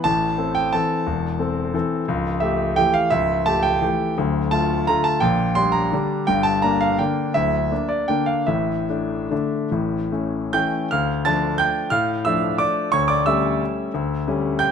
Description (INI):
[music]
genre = classical, piano waltz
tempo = 141-188 BPM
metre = 3/4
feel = rubato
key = D minor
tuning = A4 = 439 Hz
[part]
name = clear grand piano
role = solo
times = 0.0-14.7 s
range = C#1 to A6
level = -18 LUFS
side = equal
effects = none
[sound]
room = light reverb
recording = close, detailed microphones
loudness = -19 LUFS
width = side -7 dB against mid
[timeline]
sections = 0.0-10.9 A section; 10.9-14.7 B section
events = none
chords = 0.0 Am; 2.1 A7/C#; 4.2 Dm; 5.2 Gm/Bb; 6.3 Gm; 8.5 Asus4; 9.7 A; 10.9 Dm; 12.9 A7/D